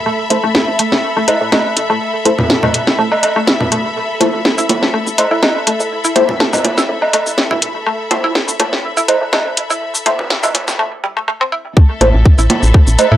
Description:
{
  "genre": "minimal techno",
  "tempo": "123 BPM",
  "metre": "4/4",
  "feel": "swing 54% on 16ths",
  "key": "unclear",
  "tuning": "A4 = 440 Hz",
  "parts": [
    { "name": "pulsing gated texture", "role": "texture", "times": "0.0-10.8 s", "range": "A4", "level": "-28 LUFS", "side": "right 4 dB", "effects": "chorus, built-in reverb, sidechain pumping" },
    { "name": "rich symphonic string section", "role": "texture", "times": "0.0-13.2 s", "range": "A4 to B5", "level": "-20 LUFS", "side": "left 2 dB", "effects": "sidechain pumping" },
    { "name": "mallet-like synth pluck", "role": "riff", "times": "0.1-13.1 s", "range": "G3 to E4", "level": "-20 LUFS", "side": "equal", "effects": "lush chorus, sidechain pumping, analog delay" },
    { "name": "filtered dub chord stab", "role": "stabs", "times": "0.3-13.1 s", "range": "A3 to C5", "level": "-17 LUFS", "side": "equal", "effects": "phaser, analog delay" },
    { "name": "woody FM bass", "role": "bass", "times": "0.3-13.2 s", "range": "E1 to A2", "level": "-16 LUFS", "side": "equal", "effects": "sidechain pumping, high-pass filter" },
    { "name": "techno drum kit", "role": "drums", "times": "0.3-13.1 s", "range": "hi-hat, shaker, snare drum", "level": "-15 LUFS", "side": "equal", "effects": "none" },
    { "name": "woodblock, congas and bongos", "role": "percussion", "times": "1.3-13.1 s", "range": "none", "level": "-18 LUFS", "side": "right 1 dB", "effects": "analog delay" },
    { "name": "electronic kick drum", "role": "drums", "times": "11.8-12.8 s", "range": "none", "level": "-7 LUFS", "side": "equal", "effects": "none" }
  ],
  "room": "light reverb",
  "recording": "dry, gritty hardware recording, high-pass filter",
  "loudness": "-12 LUFS",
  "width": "side -12 dB against mid",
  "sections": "0.0-11.8 A section; 11.8-13.2 B section",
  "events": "build-up 0.0-11.8; filter sweep on synth arpeggio sound 0.0-11.8; break 10.8-11.8; drop 11.8-13.2",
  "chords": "0.0 A5"
}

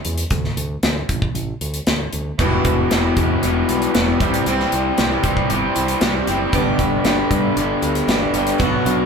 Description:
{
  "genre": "classic rock",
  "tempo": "116 BPM",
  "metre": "4/4",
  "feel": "straight",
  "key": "unclear",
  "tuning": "A4 = 441 Hz",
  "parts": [
    { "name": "big rock drum kit", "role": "drums", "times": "0.0-9.0 s", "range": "hi-hat, kick drum, snare drum", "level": "-21 LUFS", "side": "equal", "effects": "none" },
    { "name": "modern bright fingered electric bass", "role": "bass", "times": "0.1-9.0 s", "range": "E1 to G2", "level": "-24 LUFS", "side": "equal", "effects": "none" },
    { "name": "picked steel-string acoustic guitar", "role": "accompaniment", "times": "2.4-9.1 s", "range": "E2 to G4", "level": "-25 LUFS", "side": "right 4 dB", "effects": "none" },
    { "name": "raw garage guitar", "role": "riff", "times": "2.4-9.1 s", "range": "E2 to C4", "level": "-20 LUFS", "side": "left 6 dB", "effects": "overdrive" },
    { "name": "raw garage guitar", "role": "riff", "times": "2.4-9.1 s", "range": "E2 to G4", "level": "-22 LUFS", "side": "right 6 dB", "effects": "overdrive" }
  ],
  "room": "moderate studio reverb, RT60 0.6 s",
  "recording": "band playing live in one room",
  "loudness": "-16 LUFS",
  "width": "side -6 dB against mid",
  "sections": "0.0-9.1 A section",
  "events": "none",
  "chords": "0.3 D5; 2.4 Em; 4.2 C; 6.5 G"
}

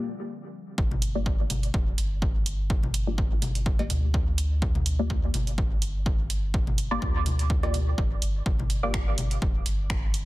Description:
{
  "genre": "dub techno",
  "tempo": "125 BPM",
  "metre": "4/4",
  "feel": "swing 55% on 16ths",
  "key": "G minor",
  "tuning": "A4 = 440 Hz",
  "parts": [
    { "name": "airy breathy pad", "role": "sustained chords", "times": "0.1-0.8 s", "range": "D3 to C4", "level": "-46 LUFS", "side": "left 1 dB", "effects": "chorus, sidechain pumping" },
    { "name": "filtered dub chord stab", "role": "stabs", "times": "0.0-10.3 s", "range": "Bb3 to D5", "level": "-32 LUFS", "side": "left 1 dB", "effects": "phaser, sidechain pumping, dub echo" },
    { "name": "warm sub bass", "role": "bass", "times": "0.8-10.3 s", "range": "F1 to D2", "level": "-28 LUFS", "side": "equal", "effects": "sidechain pumping" },
    { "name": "electronic kick drum", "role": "drums", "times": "0.8-10.0 s", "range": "none", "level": "-27 LUFS", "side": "equal", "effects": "none" },
    { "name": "congas and cowbell", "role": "percussion", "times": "0.9-9.3 s", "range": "none", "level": "-35 LUFS", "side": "left 2 dB", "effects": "sidechain pumping on perc" },
    { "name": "punchy analog drum machine", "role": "drums", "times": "1.0-10.2 s", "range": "finger snaps, hi-hat", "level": "-34 LUFS", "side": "right 4 dB", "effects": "soft clipping on snare" }
  ],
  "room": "little or no reverb",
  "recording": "dense, heavily limited modern master",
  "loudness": "-24 LUFS",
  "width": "side -18 dB against mid",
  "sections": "0.8-10.3 A section",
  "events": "filter sweep on synth stab 0.8-10.3",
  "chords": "0.0 G7(no3); 0.8 Gm7"
}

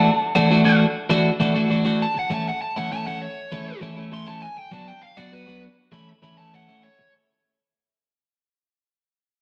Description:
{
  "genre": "rock",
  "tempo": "100 BPM",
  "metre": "4/4",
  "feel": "straight",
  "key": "unclear",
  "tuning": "A4 = 440 Hz",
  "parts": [
    { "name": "dark smooth lead guitar", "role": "melody", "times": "0.0-7.1 s", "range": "B4 to C6", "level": "-29 LUFS", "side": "equal", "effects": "overdrive" },
    { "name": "twelve-string electric guitar", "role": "riff", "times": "0.0-7.0 s", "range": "E3 to F#4", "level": "-22 LUFS", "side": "equal", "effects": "spring reverb" }
  ],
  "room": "moderate stone room reverb, RT60 1.2 s",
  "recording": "rough rehearsal-room recording, warm saturation",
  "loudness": "-21 LUFS",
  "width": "mono",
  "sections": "0.0-7.1 A section",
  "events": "fade-out 0.0-7.1; lead electric guitar solo 0.0-7.1",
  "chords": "0.0 Dadd9; 2.3 A; 4.7 Bm; 5.9 A"
}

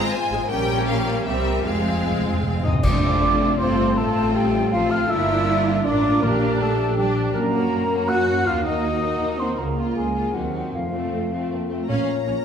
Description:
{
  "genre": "classical, dramatic, fast romantic movement for symphony orchestra",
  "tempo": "158 BPM",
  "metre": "3/4",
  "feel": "straight",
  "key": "F major, Bb minor from 7.3 s",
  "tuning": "A4 = 439 Hz",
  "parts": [
    { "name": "bright symphonic violin section", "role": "melody", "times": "0.0-12.4 s", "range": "C4 to Bb5", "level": "-32 LUFS", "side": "left 3 dB", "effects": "none" },
    { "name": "rich chamber violin section", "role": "second line", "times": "0.0-12.4 s", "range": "C4 to F5", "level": "-30 LUFS", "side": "left 3 dB", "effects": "none" },
    { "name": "rich symphonic viola section", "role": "accompaniment", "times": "0.0-12.3 s", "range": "G3 to D4", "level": "-28 LUFS", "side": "right 2 dB", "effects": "none" },
    { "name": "rich symphonic cello section", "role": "bass", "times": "0.3-12.3 s", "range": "F2 to Gb4", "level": "-26 LUFS", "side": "right 1 dB", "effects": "none" },
    { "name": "rich symphonic double bass section", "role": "bass", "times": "0.3-12.4 s", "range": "F1 to Gb2", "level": "-27 LUFS", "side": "right 2 dB", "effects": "none" },
    { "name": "timpani", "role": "percussion", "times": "1.7-2.8, 6.2-6.8, 10.7-11.3 s", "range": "F2 to Bb2", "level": "-28 LUFS", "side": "equal", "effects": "none" },
    { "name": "dark clarinet", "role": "second line", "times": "2.6-12.4 s", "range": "F4 to Gb5", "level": "-27 LUFS", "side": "left 3 dB", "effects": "none" },
    { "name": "mellow hollow silver concert flute", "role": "second line", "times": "2.6-11.5 s", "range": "F5 to Gb6", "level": "-26 LUFS", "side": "equal", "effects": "none" },
    { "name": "dark French horn section", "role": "sustained chords", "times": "2.8-12.4 s", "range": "F3 to G4", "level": "-27 LUFS", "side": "left 1 dB", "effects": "none" },
    { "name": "clash cymbals and concert bass drum", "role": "percussion", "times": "2.8-3.6 s", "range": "none", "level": "-26 LUFS", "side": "equal", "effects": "none" }
  ],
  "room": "wet recital hall reverb, RT60 1.5 s",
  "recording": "heard from further back in the room",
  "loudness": "-19 LUFS",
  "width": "side -7 dB against mid",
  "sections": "0.0-2.8 A section; 2.8-11.9 B section",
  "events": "timpani fill 1.7-2.8; band accent 2.8-3.2",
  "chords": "0.5 Gdim/Bb; 1.3 C7; 1.7 Fm; 2.8 F; 4.0 F/A; 5.1 Gm7; 6.2 Gm/Bb; 7.3 Gb; 8.5 Ebm; 9.6 Bbm/Db; 10.3 Cm7b5/Eb; 10.7 F; 11.9 Bbm"
}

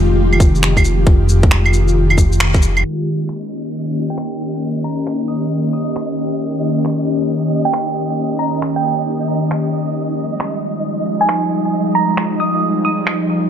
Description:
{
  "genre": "future garage",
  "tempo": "135 BPM",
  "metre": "4/4",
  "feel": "swing 65% on 16ths",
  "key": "unclear",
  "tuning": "A4 = 441 Hz",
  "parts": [
    { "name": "ethereal airy pad", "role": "sustained chords", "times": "0.0-13.5 s", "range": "Eb3 to G4", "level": "-18 LUFS", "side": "left 1 dB", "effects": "ensemble chorus, built-in reverb, vintage 12-bit sampler grit, sidechain pumping" },
    { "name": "dark detuned saw bass", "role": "bass", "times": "0.0-2.8 s", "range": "F1", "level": "-14 LUFS", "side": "equal", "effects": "sidechain pumping" },
    { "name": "electronic claves, shaker and finger snaps", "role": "drums", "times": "0.3-13.2 s", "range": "none", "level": "-20 LUFS", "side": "right 1 dB", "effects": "overdrive, small room ambience" },
    { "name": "electronic kick drum", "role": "drums", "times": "0.4-2.6 s", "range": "none", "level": "-12 LUFS", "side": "equal", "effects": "overdrive, small room ambience" },
    { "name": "flickering grainy texture", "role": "texture", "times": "3.6-13.5 s", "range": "Eb5", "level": "-27 LUFS", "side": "right 2 dB", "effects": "built-in reverb" },
    { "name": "thumb-piano-like synth pluck", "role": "melody", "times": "4.1-13.3 s", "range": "G5 to Eb6", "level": "-20 LUFS", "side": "right 4 dB", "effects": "chorus, phaser, analog delay" }
  ],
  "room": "moderate concert hall reverb, RT60 1.8 s",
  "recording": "low-pass filter",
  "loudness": "-14 LUFS",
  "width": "side -9 dB against mid",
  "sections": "0.0-2.8 A section; 2.8-13.5 B section",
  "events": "band accent 2.4; filter sweep on ambient pad 2.8-13.5; filter sweep 2.8-13.5",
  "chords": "0.0 Fm9; 2.8 Eb7; 10.0 Fm9"
}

